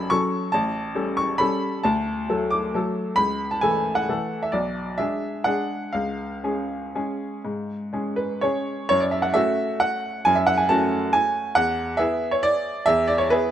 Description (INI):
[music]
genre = classical, piano waltz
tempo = 115-144 BPM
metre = 3/4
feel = rubato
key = F# minor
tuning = A4 = 440 Hz
[part]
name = clear upright piano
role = solo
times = 0.0-13.5 s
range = A1 to D6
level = -21 LUFS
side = equal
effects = none
[sound]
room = light reverb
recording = close, detailed microphones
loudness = -21 LUFS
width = side -10 dB against mid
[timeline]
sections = 0.0-8.9 A section; 8.9-13.5 B section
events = none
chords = 0.0 F#m/A; 0.5 A7; 1.9 D; 3.2 A/C#; 4.5 G#dim/B; 5.9 C#; 8.9 F#m; 11.6 E